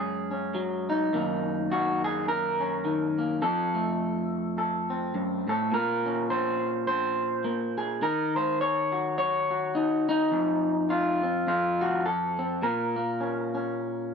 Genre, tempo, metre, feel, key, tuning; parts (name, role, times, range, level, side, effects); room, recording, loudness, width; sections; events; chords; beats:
folk, solo fingerstyle acoustic guitar; 104 BPM; 4/4; swing 57% on 8ths; Bb minor; A4 = 440 Hz
electric guitar through a small old amp; solo; 0.0-14.1 s; F2 to Db5; -25 LUFS; equal
light reverb; close, detailed microphones; -25 LUFS; side -6 dB against mid
0.0-14.1 A section
0.0 Gbsus2; 1.1 Ebm7/Gb; 3.4 F; 5.7 Bbmadd9; 8.0 Ebm7; 10.3 F5; 12.6 Bbm
0.55 | 1.12 1.70 2.27 2.85 | 3.42 4.00 4.57 5.15 | 5.72 6.29 6.87 7.45 | 8.02 8.60 9.17 9.75 | 10.32 10.90 11.47 12.05 | 12.62 13.20 13.78